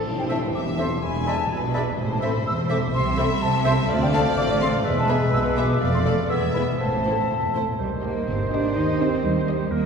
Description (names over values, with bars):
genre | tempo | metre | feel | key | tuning
cinematic, playful, whimsical film cue | 125 BPM | 2/4 | straight | A minor | A4 = 441 Hz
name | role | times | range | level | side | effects
warm studio violin section | second line | 0.1-9.7 s | B4 to G#5 | -31 LUFS | left 1 dB | none
dark studio double bass section | bass | 0.1-9.9 s | E1 to Eb2 | -26 LUFS | right 2 dB | none
warm studio cello section | bass | 0.1-9.9 s | D2 to Eb4 | -26 LUFS | right 2 dB | none
tam-tam | percussion | 0.1-1.9 s | none | -34 LUFS | left 2 dB | none
mellow concert flute | second line | 0.2-9.9 s | Eb5 to E6 | -28 LUFS | left 2 dB | none
warm chamber violin section | melody | 0.3-9.7 s | B4 to F5 | -35 LUFS | left 3 dB | none
mellow clarinet | second line | 0.3-9.9 s | G4 to D5 | -34 LUFS | left 1 dB | none
warm oboe | second line | 0.3-9.9 s | Bb4 to F5 | -33 LUFS | equal | none
mellow bassoon | accompaniment | 0.3-9.9 s | Eb3 to C4 | -30 LUFS | left 1 dB | none
warm studio viola section | accompaniment | 0.3-9.7 s | G#3 to A4 | -34 LUFS | right 1 dB | none
mellow French horn section | sustained chords | 0.3-9.6 s | A3 to C5 | -32 LUFS | left 1 dB | none
room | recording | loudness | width
wet church reverb, RT60 3.1 s | heard from further back in the room | -20 LUFS | side -6 dB against mid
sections
0.1-7.8 A section; 7.8-9.9 B section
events
band accent 0.1-0.5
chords
0.1 Am; 1.0 E7; 2.0 Am; 2.9 Am/C; 3.9 Dm7; 4.8 E; 5.8 Dm/F; 6.3 E; 6.8 Am; 7.8 Cm; 8.8 Cm/Eb